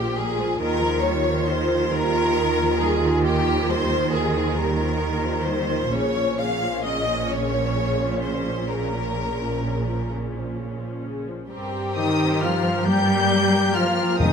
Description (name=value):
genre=cinematic, emotional film score for orchestra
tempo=42-46 BPM (dotted quarters)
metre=6/8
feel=rubato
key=unclear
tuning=A4 = 441 Hz
part: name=rich studio violin section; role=second line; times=0.0-14.3 s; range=G4 to F5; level=-25 LUFS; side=left 2 dB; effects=none
part: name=rich studio viola section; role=accompaniment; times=0.0-14.3 s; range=Db3 to F4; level=-28 LUFS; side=equal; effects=none
part: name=rich studio cello section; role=bass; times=0.0-14.3 s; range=Bb2 to G3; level=-27 LUFS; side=right 2 dB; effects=none
part: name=rich studio double bass section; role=bass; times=0.0-14.3 s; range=Bb1 to G2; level=-28 LUFS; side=right 3 dB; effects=none
part: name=dark studio violin section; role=melody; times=12.0-14.3 s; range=Eb6 to G6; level=-26 LUFS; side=left 3 dB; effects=none
part: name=clear clarinet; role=second line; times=12.0-14.3 s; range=Eb4 to G4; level=-28 LUFS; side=left 2 dB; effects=none
part: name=mellow large flute ensemble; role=second line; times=12.0-14.3 s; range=Eb5 to G5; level=-27 LUFS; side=left 2 dB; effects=none
part: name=dark French horn section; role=sustained chords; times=12.0-14.3 s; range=Eb3 to G3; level=-25 LUFS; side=left 5 dB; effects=none
part: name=timpani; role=percussion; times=14.2-14.3 s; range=F2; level=-18 LUFS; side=left 2 dB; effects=none
room=wet recital hall reverb, RT60 1.6 s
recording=none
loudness=-20 LUFS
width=side -6 dB against mid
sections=0.0-11.5 A section; 11.5-14.3 B section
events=none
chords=0.0 Bb5; 0.6 Ebadd9; 5.9 Bbm; 11.5 Eb69/G